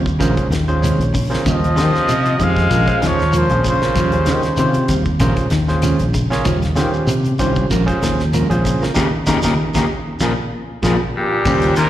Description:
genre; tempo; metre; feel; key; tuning
afrobeat; 96 BPM; 4/4; swing 54% on 16ths; Eb mixolydian; A4 = 440 Hz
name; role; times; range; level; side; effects
electric guitar at the edge of break-up; arpeggios; 0.0-11.9 s; Bb2 to F3; -22 LUFS; left 4 dB; plate reverb, slapback echo
mellow electric guitar; stabs; 0.0-11.8 s; G3 to C5; -26 LUFS; right 6 dB; plate reverb, slapback echo
fingered electric bass; bass; 0.0-11.7 s; Bb1 to Eb3; -18 LUFS; equal; none
damped 70s drum kit; drums; 0.1-11.9 s; crash cymbal, hi-hat, kick drum, snare drum; -24 LUFS; equal; none
shekere; percussion; 0.1-11.9 s; none; -28 LUFS; right 1 dB; none
overdriven tine electric piano; accompaniment; 0.2-11.7 s; C4 to Db5; -23 LUFS; right 2 dB; plate reverb, slapback echo
breathy trumpet; melody; 1.5-4.9, 11.2-11.9 s; G4 to F5; -20 LUFS; left 2 dB; slapback echo, plate reverb
brilliant trombone; second line; 1.5-4.9, 11.2-11.9 s; Bb2 to Ab3; -22 LUFS; right 4 dB; plate reverb, slapback echo
raspy baritone saxophone; second line; 11.2-11.9 s; G2 to Bb2; -20 LUFS; left 2 dB; plate reverb, slapback echo
room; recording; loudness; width
moderate club reverb, RT60 0.7 s; live gig heard through the venue's PA, recital hall reverb; -14 LUFS; side -12 dB against mid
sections
0.0-11.5 A section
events
tine electric piano fill 0.5-1.5; band accent 9.0-11.5; drum fill 11.1-11.5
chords
0.2 Bbm7; 1.5 Eb13; 2.7 Bbm7; 4.0 Eb13; 5.2 Bbm7; 6.5 Eb13; 7.7 Bbm7; 9.0 Eb7; 10.2 Bbm7

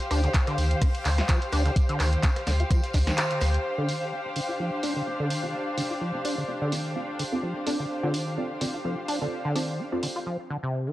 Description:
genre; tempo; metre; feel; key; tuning
acid house; 127 BPM; 4/4; swing 55% on 16ths; D phrygian; A4 = 442 Hz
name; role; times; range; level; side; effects
modern studio drum kit; drums; 0.0-10.2 s; hi-hat, snare drum, tambourine; -45 LUFS; left 1 dB; none
punchy analog drum machine; drums; 0.0-10.1 s; handclaps, hi-hat, rim click, snare drum; -32 LUFS; equal; none
muted studio string section; texture; 0.0-10.3 s; D4 to F5; -31 LUFS; left 1 dB; sidechain pumping
deep acid bass; riff; 0.1-10.9 s; C3 to F4; -31 LUFS; equal; analog chorus, sidechain pumping
warm sub bass; bass; 0.1-3.6 s; D2; -24 LUFS; equal; sidechain pumping
electronic kick drum; drums; 0.3-3.0 s; none; -23 LUFS; equal; none
filtered dub chord stab; stabs; 3.9-10.0 s; C4 to F5; -33 LUFS; right 1 dB; phaser, tape echo
room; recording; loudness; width
light reverb, small room ambience; dry, gritty hardware recording; -24 LUFS; side -15 dB against mid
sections
0.0-3.6 A section; 3.6-10.9 B section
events
kick drops out 3.2-3.6; band accent 3.2; filter sweep on synth stab 3.6-10.9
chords
0.0 Dm7

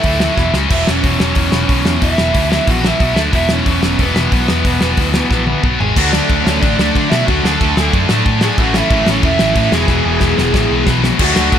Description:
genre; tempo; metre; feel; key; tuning
punk rock; 183 BPM; 4/4; straight; unclear; A4 = 440 Hz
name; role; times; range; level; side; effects
lead guitar through a small cranked amp; melody; 0.0-11.6 s; B3 to A5; -19 LUFS; right 2 dB; overdrive, tape echo
distorted electric guitar; riff; 0.0-11.6 s; E2 to D4; -17 LUFS; left 2 dB; distortion
overdriven picked electric bass; bass; 0.0-11.6 s; E1 to D3; -19 LUFS; equal; none
loose indie drum kit; drums; 0.0-11.6 s; crash cymbal, hi-hat, kick drum, snare drum, toms; -16 LUFS; equal; none
thick fuzz guitar; riff; 6.0-11.6 s; A2 to F#4; -19 LUFS; equal; distortion
room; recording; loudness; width
little or no reverb; none; -11 LUFS; side -9 dB against mid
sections
0.0-6.0 A section; 6.0-11.2 B section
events
drum fill 0.4-0.7, 5.3-6.0, 9.9-11.2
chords
0.4 E5; 0.5 C#5; 0.7 E5; 3.0 B5; 3.2 D5; 3.3 E5; 5.6 B5; 5.8 G#5; 6.0 D; 8.6 A; 9.7 E

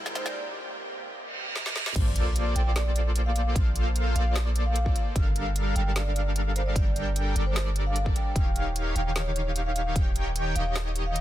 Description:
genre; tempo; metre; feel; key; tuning
future bass; 150 BPM; 4/4; half-time; Bb major; A4 = 440 Hz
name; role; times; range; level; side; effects
shimmering ambient pad; sustained chords; 0.1-1.9 s; C3 to G4; -46 LUFS; right 2 dB; chorus, built-in reverb, sidechain pumping
soft supersaw; riff; 0.0-11.2 s; Eb3 to G5; -33 LUFS; equal; cassette tape, sidechain pumping
long sustained 808-style bass; bass; 0.0-11.2 s; Eb1 to Bb1; -27 LUFS; equal; sidechain pumping, high-pass filter
riser, reverse cymbal and sub drop; sound effects; 0.0-3.6 s; none; -36 LUFS; right 2 dB; none
trap drum kit; drums; 0.1-11.2 s; crash cymbal, hi-hat, snare drum; -35 LUFS; right 1 dB; high-pass filter on hats, high-pass filter on snare, high-pass filter on cymbals
vibraphone with soft mallets; melody; 0.2-11.2 s; C5 to G5; -36 LUFS; equal; sidechain pumping, ping-pong delay
airy dreamy lead; arpeggios; 2.0-11.2 s; D5 to G5; -38 LUFS; left 1 dB; chorus, sidechain pumping
electronic kick drum; drums; 2.0-10.0 s; none; -26 LUFS; equal; none
room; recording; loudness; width
digital ambience; dense, heavily limited modern master, high-pass filter; -24 LUFS; side -13 dB against mid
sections
0.0-2.0 A section; 2.0-11.2 B section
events
build-up 0.0-2.0; drum fill 0.0-0.4, 1.6-2.0; riser 0.0-0.4; filter sweep 0.0-2.0; reverse cymbal 1.3-2.0; drop 2.0-11.2; impact 2.0-3.6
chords
0.0 Abmaj9; 2.0 Bbmaj7; 5.0 Gm7; 8.2 Eb7

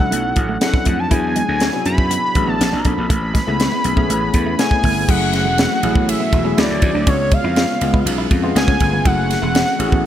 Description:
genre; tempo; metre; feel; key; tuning
polished 1980s jazz-funk pop; 121 BPM; 4/4; straight; unclear; A4 = 440 Hz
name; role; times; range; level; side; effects
fat analog lead; melody; 0.0-10.1 s; C#5 to B5; -21 LUFS; equal; none
tine electric piano; accompaniment; 0.0-10.1 s; F#3 to A4; -22 LUFS; left 2 dB; wide subtle chorus
gritty slap bass; bass; 0.0-10.1 s; E1 to F#2; -21 LUFS; equal; overdrive
clean electric guitar; riff; 0.1-10.0 s; F#3 to E#4; -28 LUFS; right 6 dB; lush chorus
tight funk drum kit; drums; 0.1-10.0 s; crash cymbal, hi-hat, kick drum, ride cymbal, snare drum; -18 LUFS; equal; gated reverb
soft string machine; sustained chords; 1.5-10.1 s; C#3 to G#5; -28 LUFS; left 1 dB; phaser, ensemble chorus
room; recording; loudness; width
light reverb, small room ambience; bright 1980s-style digital production; -14 LUFS; side -11 dB against mid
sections
0.0-5.1 A section; 5.1-10.1 B section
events
none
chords
0.0 Bm11; 1.1 E9; 2.6 A#maj9; 3.1 Amaj9; 5.1 F#m9; 6.6 D9; 7.1 C#7; 8.6 C#7b13; 9.1 F#m9

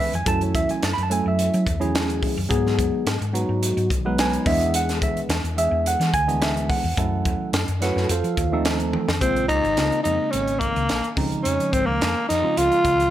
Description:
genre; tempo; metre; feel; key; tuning
electric jazz fusion; 107 BPM; 4/4; straight; F# minor, Bb minor from 9.2 s; A4 = 438 Hz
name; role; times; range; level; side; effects
tine electric piano; accompaniment; 0.0-13.1 s; Db3 to B5; -23 LUFS; right 2 dB; phaser
hollow-body short-scale fingered electric bass; bass; 0.1-13.1 s; Ab1 to F#3; -26 LUFS; left 1 dB; none
crisp fusion drum kit; drums; 0.1-13.1 s; hi-hat, kick drum, snare drum, toms; -26 LUFS; equal; none
growling tenor saxophone; melody; 9.2-13.1 s; Bb3 to F4; -20 LUFS; equal; none
room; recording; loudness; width
light reverb; none; -19 LUFS; side -12 dB against mid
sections
0.0-9.2 A section; 9.2-13.1 B section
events
drum fill 8.9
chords
0.3 F#m7; 2.5 G#m7; 4.5 E7; 7.0 F#m7; 8.1 F7; 9.2 Bbm9; 11.2 Dbmaj9

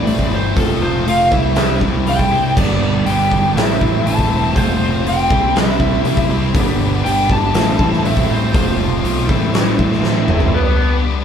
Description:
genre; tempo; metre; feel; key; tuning
quiet-loud alternative rock; 120 BPM; 4/4; straight; A minor; A4 = 440 Hz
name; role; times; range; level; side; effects
lead guitar through a small cranked amp; melody; 0.0-11.0 s; B3 to A5; -19 LUFS; equal; overdrive
picked steel-string acoustic guitar; arpeggios; 0.0-2.6 s; A2 to F4; -26 LUFS; left 6 dB; none
crunchy overdriven guitar; riff; 0.0-10.5 s; G2 to F4; -21 LUFS; right 4 dB; phaser
tight distorted guitar; riff; 0.0-11.2 s; G2 to F4; -23 LUFS; left 7 dB; distortion
growling picked electric bass; bass; 0.0-10.5 s; E1 to C2; -20 LUFS; equal; overdrive
huge arena drum kit; drums; 0.1-10.5 s; crash cymbal, hi-hat, kick drum, snare drum, toms; -17 LUFS; equal; none
tonewheel organ; sustained chords; 2.6-11.2 s; G4 to C6; -31 LUFS; left 1 dB; none
room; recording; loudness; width
moderate studio reverb, RT60 0.9 s; band playing live in one room; -13 LUFS; side -8 dB against mid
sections
0.0-10.5 A section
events
lead electric guitar solo 0.0-10.5; drum fill 10.0-10.5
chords
0.0 Am; 0.6 F; 1.3 C; 2.6 G; 3.6 Am; 4.6 F; 5.3 C; 6.6 G; 7.6 Am; 8.5 F; 9.3 Am; 10.5 G

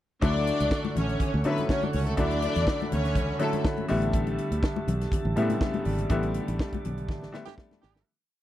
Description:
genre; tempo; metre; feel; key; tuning
disco; 122 BPM; 4/4; straight; unclear; A4 = 442 Hz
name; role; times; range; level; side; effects
clear symphonic string section; second line; 0.2-3.6 s; A3 to D5; -30 LUFS; left 1 dB; none
bright baby grand piano; accompaniment; 0.2-8.1 s; C#3 to E4; -31 LUFS; left 2 dB; none
mellow tonewheel organ; sustained chords; 0.2-8.0 s; D3 to C#6; -34 LUFS; right 2 dB; slow rotary speaker
fingered electric bass; bass; 0.2-8.0 s; G#1 to D3; -28 LUFS; right 1 dB; none
tight funk drum kit; drums; 0.2-8.1 s; hi-hat, kick drum, snare drum; -29 LUFS; equal; none
congas; percussion; 0.2-7.8 s; none; -36 LUFS; left 6 dB; none
clear horn section; stabs; 7.5-8.0 s; E3 to G4; -47 LUFS; right 11 dB; none
room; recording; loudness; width
little or no reverb; dry, close 1970s-style studio recording; -24 LUFS; side -13 dB against mid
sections
0.2-8.1 pre-chorus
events
fade-out 6.1-8.1; band accent 6.1-8.1; drum fill 7.1-8.1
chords
0.2 Dmaj7; 3.9 A7sus4

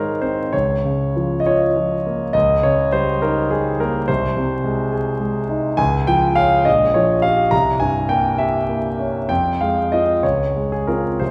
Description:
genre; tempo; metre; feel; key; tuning
classical, romantic character piece for solo piano; 57-72 BPM (dotted quarters); 6/8; rubato; Ab major; A4 = 440 Hz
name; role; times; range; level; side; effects
warm concert grand piano; solo; 0.0-11.3 s; Bb1 to Bb5; -18 LUFS; equal; none
room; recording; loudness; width
wet recital hall reverb, RT60 1.4 s; heard from further back in the room, vinyl crackle; -18 LUFS; mono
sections
0.0-11.3 A section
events
none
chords
0.0 Ab; 0.5 Bbm/Db; 2.3 Eb7/Db; 4.1 Ab/C; 5.8 Db; 6.7 Gm7b5/Bb; 7.5 C7b9; 9.3 Fm; 10.2 Dbmaj7

